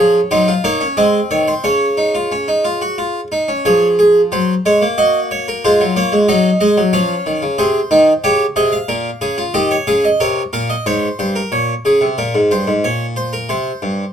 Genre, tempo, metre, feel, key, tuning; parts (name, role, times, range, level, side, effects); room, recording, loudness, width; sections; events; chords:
classical, baroque-style 3-part fugue for harpsichord; 91 BPM; 3/4; straight; Db major; A4 = 440 Hz
harpsichord; solo; 0.0-14.1 s; G2 to F5; -13 LUFS; equal
little or no reverb; close, detailed microphones; -13 LUFS; side -8 dB against mid
0.0-3.7 A section; 3.7-11.5 B section; 11.5-14.1 A section
0.3 Ebm/Gb; 1.0 Ab; 1.7 Db; 3.7 Db/F; 5.0 Ebm7/Bb; 5.6 Ab7; 6.9 Db/F; 7.6 Ab/C; 8.9 Bbm7; 9.5 Eb7; 10.9 Ab; 12.8 Bbmadd9; 13.5 C5